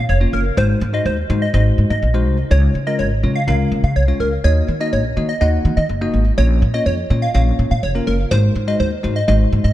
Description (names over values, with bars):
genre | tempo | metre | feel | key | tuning
dance-pop | 124 BPM | 4/4 | straight | unclear | A4 = 439 Hz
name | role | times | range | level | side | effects
plucky unison lead | melody | 0.0-9.7 s | Bb4 to F5 | -22 LUFS | right 1 dB | digital delay
upright bass | bass | 0.0-9.7 s | F1 to Eb3 | -16 LUFS | equal | none
bell-like tine electric piano | accompaniment | 0.2-9.7 s | Ab3 to Gb5 | -22 LUFS | left 3 dB | none
room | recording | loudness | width
light reverb, small room ambience | dark, warm production | -14 LUFS | side -14 dB against mid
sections
0.0-9.7 A section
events
none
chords
0.0 Bbm; 0.6 Ab7; 2.5 Db; 4.4 Ebm; 6.4 Bbm; 8.3 Ab7